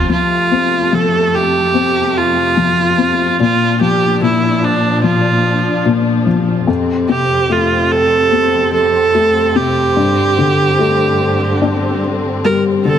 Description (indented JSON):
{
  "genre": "pop",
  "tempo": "73 BPM",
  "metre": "4/4",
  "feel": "straight",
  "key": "F major",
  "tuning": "A4 = 440 Hz",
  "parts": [
    { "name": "clear viola", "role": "melody", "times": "0.0-13.0 s", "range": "D4 to Bb4", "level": "-14 LUFS", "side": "right 4 dB", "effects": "none" },
    { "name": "dark upright piano", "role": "accompaniment", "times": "0.0-13.0 s", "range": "F2 to D4", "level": "-16 LUFS", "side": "left 5 dB", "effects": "none" },
    { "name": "warm studio string section", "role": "sustained chords", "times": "0.0-13.0 s", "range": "F2 to D4", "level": "-20 LUFS", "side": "equal", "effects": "none" }
  ],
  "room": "light reverb, small room reverb",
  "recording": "heavily compressed radio sound",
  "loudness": "-11 LUFS",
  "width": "side -9 dB against mid",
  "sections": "0.1-13.0 A section",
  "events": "none",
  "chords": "0.1 F; 3.4 Bb; 6.7 F; 10.0 Gsus2"
}